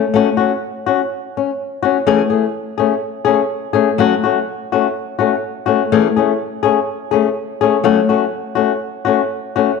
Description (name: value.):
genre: highlife.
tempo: 124 BPM.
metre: 4/4.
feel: straight.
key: A major.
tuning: A4 = 440 Hz.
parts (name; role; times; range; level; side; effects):
flamenco guitar; solo; 0.0-9.7 s; E3 to G#4; -14 LUFS; left 7 dB; slapback echo.
room: wet echo chamber reverb, RT60 1.8 s, small room ambience.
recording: none.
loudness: -14 LUFS.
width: side -4 dB against mid.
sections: 0.0-9.8 A section.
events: none.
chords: 0.1 A6 (rootless); 2.1 Amaj7; 4.0 F#m; 5.9 Amaj7; 7.9 F#m.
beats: | 0.12 0.61 1.09 1.57 | 2.05 2.54 3.02 3.50 | 3.98 4.47 4.95 5.43 | 5.92 6.40 6.88 7.37 | 7.85 8.34 8.82 9.31.